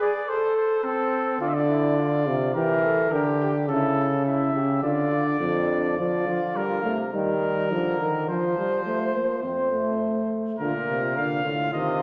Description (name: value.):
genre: classical, imitative canzona for brass ensemble.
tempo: 105 BPM.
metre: 4/4.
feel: straight.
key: D minor, Bb major from 6.0 s.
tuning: A4 = 441 Hz.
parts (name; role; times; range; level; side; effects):
clear trumpet; melody; 0.0-12.0 s; G4 to F5; -31 LUFS; equal; none.
dark flugelhorn; second line; 0.0-12.0 s; C4 to C5; -31 LUFS; equal; none.
warm trombone; accompaniment; 1.4-12.0 s; F2 to C4; -27 LUFS; equal; none.
clear bass trombone; bass; 6.0-12.0 s; F2 to F3; -34 LUFS; equal; none.
room: wet scoring stage reverb, RT60 2.0 s.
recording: none.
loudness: -24 LUFS.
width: mono.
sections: 0.0-6.0 A section; 6.0-10.6 B section; 10.6-12.0 C section.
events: none.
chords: 0.3 Am; 1.4 Dm; 2.5 Edim; 3.7 A/C#; 4.8 Dm; 6.0 Bb/D; 7.1 Eb; 8.3 Fsus4; 9.4 F; 10.6 Bb.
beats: 0.28 0.84 | 1.40 1.97 2.54 3.11 | 3.68 4.25 4.82 5.40 | 5.98 6.56 7.13 7.71 | 8.28 8.86 9.44 10.02 | 10.60 11.17 11.74.